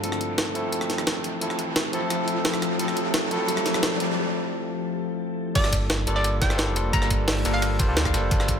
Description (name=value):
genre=liquid drum and bass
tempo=174 BPM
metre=4/4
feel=straight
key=unclear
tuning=A4 = 442 Hz
part: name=barky tine electric piano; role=accompaniment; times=0.0-8.6 s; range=F3 to C5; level=-28 LUFS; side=equal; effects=digital delay
part: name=glassy FM pad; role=sustained chords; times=0.0-8.6 s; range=F3 to A4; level=-31 LUFS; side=left 4 dB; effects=ensemble chorus, built-in reverb, sidechain pumping
part: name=jungle sampler-style drum kit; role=drums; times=0.0-8.6 s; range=crash cymbal, hi-hat, rim click, snare drum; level=-27 LUFS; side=equal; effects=none
part: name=riser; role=sound effects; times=0.0-4.2 s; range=none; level=-30 LUFS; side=right 1 dB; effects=none
part: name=hollow square pluck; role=melody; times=5.6-7.9 s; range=D5 to Bb5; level=-29 LUFS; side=equal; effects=chorus, ping-pong delay
part: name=sub bass with octave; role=bass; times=5.6-8.6 s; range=F1 to D2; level=-26 LUFS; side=equal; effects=none
part: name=crunchy breakbeat drum kit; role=drums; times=5.6-8.6 s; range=hi-hat, ride cymbal, snare drum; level=-33 LUFS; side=equal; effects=high-pass filter on cymbals, high-pass filter on hats, high-pass filter on snare, high-pass filter on room
part: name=electronic kick drum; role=drums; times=5.6-8.6 s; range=none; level=-24 LUFS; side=equal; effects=none
room=moderate digital room reverb, RT60 1.2 s, digital ambience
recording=none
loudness=-22 LUFS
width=side -8 dB against mid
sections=0.0-5.6 A section; 5.6-8.6 B section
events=build-up 0.0-5.6; riser 0.0-4.2; break 4.2-5.6; drop 5.6-8.6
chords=0.0 Fmaj7; 5.6 Gm9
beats=| 0.04 0.38 0.73 1.07 | 1.42 1.76 2.11 2.45 | 2.80 3.14 3.48 3.83 | 4.17 4.52 4.87 5.21 | 5.55 5.90 6.24 6.59 | 6.93 7.28 7.62 7.97 | 8.31